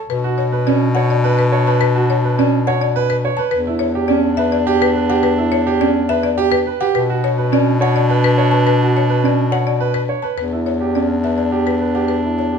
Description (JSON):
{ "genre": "classical, minimalist pattern music", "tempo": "105 BPM", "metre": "3/4", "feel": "straight", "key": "B minor", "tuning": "A4 = 439 Hz", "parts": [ { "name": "buzzing marimba with medium mallets", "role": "melody", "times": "0.0-12.6 s", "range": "B4 to A5", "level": "-21 LUFS", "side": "left 10 dB", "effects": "none" }, { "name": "clear clarinet", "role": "second line", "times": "0.1-12.6 s", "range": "D4", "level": "-24 LUFS", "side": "right 3 dB", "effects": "none" }, { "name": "clear bass clarinet", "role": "bass", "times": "0.1-12.6 s", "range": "E2 to B2", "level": "-18 LUFS", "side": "left 3 dB", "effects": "none" }, { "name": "dark concert grand piano", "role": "arpeggios", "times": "0.2-12.6 s", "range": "C#4 to C#5", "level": "-19 LUFS", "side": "right 8 dB", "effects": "none" } ], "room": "light reverb", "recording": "close, detailed microphones", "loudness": "-14 LUFS", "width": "side -6 dB against mid", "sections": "0.1-12.6 A section", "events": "none", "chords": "0.1 Bm; 3.5 Em7; 7.0 Bm; 10.4 Em7" }